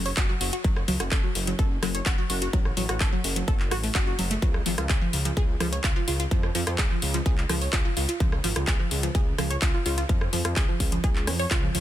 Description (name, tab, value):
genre	progressive house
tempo	127 BPM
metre	4/4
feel	straight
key	unclear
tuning	A4 = 436 Hz
part	dark detuned saw bass	bass	0.0-11.8 s	F#1 to E#2	-30 LUFS	equal	sidechain pumping
part	wide unison pluck	arpeggios	0.1-11.8 s	E#3 to C#5	-30 LUFS	right 1 dB	sidechain pumping, digital delay
part	big-room dance drum kit	drums	0.1-11.8 s	handclaps, hi-hat, rim click	-29 LUFS	left 1 dB	small room reverb
part	electronic kick drum	drums	0.2-11.6 s	none	-24 LUFS	equal	small room reverb
room	digital ambience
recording	dense, heavily limited modern master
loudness	-23 LUFS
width	side -12 dB against mid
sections	0.0-11.8 A section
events	none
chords	0.0 F#m; 4.4 C#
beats	0.17 | 0.64 1.12 1.59 2.06 | 2.53 3.01 3.48 3.95 | 4.42 4.90 5.37 5.84 | 6.31 6.79 7.26 7.73 | 8.20 8.68 9.15 9.62 | 10.09 10.56 11.04 11.51